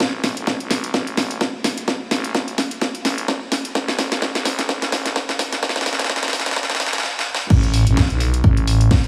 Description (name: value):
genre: bass house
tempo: 128 BPM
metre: 4/4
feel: swing 56% on 16ths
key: unclear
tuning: A4 = 439 Hz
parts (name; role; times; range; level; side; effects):
- growling FM bass; bass; 0.0-8.9 s; G1 to C2; -24 LUFS; equal; tube saturation, sidechain pumping, high-pass filter
- electronic kick drum; drums; 0.0-9.0 s; none; -20 LUFS; equal; high-pass filter on kick, high-pass filter on room
- house drum kit; drums; 0.0-9.1 s; crash cymbal, hi-hat, snare drum; -23 LUFS; equal; none
room: moderate lush hall reverb, RT60 2.0 s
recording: high-pass filter, small room ambience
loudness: -20 LUFS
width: mono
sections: 0.0-7.5 A section; 7.5-9.1 B section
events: build-up 0.0-7.5; drum fill 0.0-7.0, 7.0-7.5; filter sweep 0.0-7.5; drop 7.5-9.1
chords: none